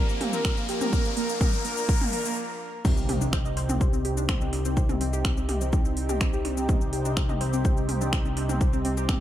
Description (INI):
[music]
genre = melodic techno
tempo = 125 BPM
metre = 4/4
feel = straight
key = C minor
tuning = A4 = 440 Hz
[part]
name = soft supersaw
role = melody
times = 0.0-2.3 s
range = Bb3 to Bb4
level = -31 LUFS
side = equal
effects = sidechain pumping, tape echo
[part]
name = warm analog pad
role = sustained chords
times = 0.0-9.2 s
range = C3 to G4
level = -34 LUFS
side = equal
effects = chorus, sidechain pumping
[part]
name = soft round pluck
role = arpeggios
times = 0.0-9.2 s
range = Bb3 to Eb5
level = -32 LUFS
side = equal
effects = wide subtle chorus, sidechain pumping, analog delay
[part]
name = fat analog bass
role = bass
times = 0.0-9.2 s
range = Bb1 to C2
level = -30 LUFS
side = equal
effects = sidechain pumping, high-pass filter
[part]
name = riser and impact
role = sound effects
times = 0.0-4.8 s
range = none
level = -33 LUFS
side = left 1 dB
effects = none
[part]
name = house drum kit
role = drums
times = 0.1-9.2 s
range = crash cymbal, finger snaps, hi-hat, shaker, toms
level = -32 LUFS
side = right 1 dB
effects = studio ambience, analog delay
[part]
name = electronic kick drum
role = drums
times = 0.4-9.2 s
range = none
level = -24 LUFS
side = equal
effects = studio ambience
[sound]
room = light reverb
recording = echo-heavy mix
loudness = -23 LUFS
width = side -12 dB against mid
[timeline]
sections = 0.0-2.8 A section; 2.8-9.2 B section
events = build-up 0.0-2.8; riser 0.0-2.4; stop 2.4-2.8; drop 2.8-9.2; impact 2.8-4.8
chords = 0.0 Bb; 2.8 Cm